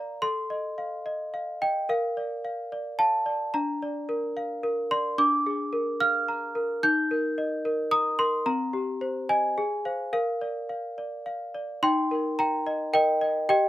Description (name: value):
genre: classical, lullaby for celesta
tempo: 109 BPM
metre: 3/4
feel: straight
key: Bb major, Eb major from 5.2 s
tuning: A4 = 439 Hz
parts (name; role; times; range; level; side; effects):
- worn celesta; solo; 0.0-13.7 s; C4 to G6; -25 LUFS; equal; none
room: light reverb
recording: recorded outdoors, with no room sound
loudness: -25 LUFS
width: side -14 dB against mid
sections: 0.0-11.8 A section; 11.8-13.7 B section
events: none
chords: 0.2 F7/A; 1.9 Bb; 3.5 Bb/D; 5.2 Bb7/D; 6.8 Eb; 8.5 Cm; 9.6 Fm/Ab; 10.1 Bb; 11.8 Eb